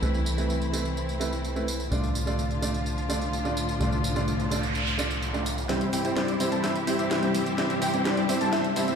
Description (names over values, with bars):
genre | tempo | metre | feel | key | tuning
EDM, festival progressive house | 127 BPM | 4/4 | straight | C major | A4 = 440 Hz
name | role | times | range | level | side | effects
felt-muted upright piano | accompaniment | 0.0-8.9 s | G3 to D5 | -31 LUFS | right 3 dB | vintage 12-bit sampler grit, ping-pong delay
muted chamber string section | sustained chords | 0.0-9.0 s | A2 to G4 | -31 LUFS | left 2 dB | none
fat analog bass | bass | 0.0-5.7 s | C2 | -29 LUFS | equal | none
house drum kit | drums | 0.0-9.0 s | hi-hat, snare drum, tambourine | -34 LUFS | equal | none
noise sweep and riser | sound effects | 4.1-9.0 s | none | -35 LUFS | right 1 dB | none
wide unison lead | arpeggios | 5.7-9.0 s | D5 to A5 | -32 LUFS | left 1 dB | ping-pong delay
dense compressed supersaw | riff | 5.7-9.0 s | G3 to A5 | -27 LUFS | left 1 dB | low-pass filter, ping-pong delay
room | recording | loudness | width
moderate lush hall reverb, RT60 1.8 s, digital ambience | played on a big sound system in a bare room, large studio reverb | -24 LUFS | side -6 dB against mid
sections
0.0-5.7 A section; 5.7-9.0 B section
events
noise sweep 4.1-5.7; build-up 5.7-9.0; drum fill 5.7-9.0; filter sweep on supersaw synth 5.7-9.0; filter sweep on analog synth lead 5.7-9.0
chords
0.0 Amadd9/C; 1.9 Dm/C; 5.7 C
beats
| 0.02 0.49 0.97 1.44 | 1.91 2.38 2.86 3.33 | 3.80 4.28 4.75 5.22 | 5.69 6.16 6.64 7.11 | 7.58 8.05 8.53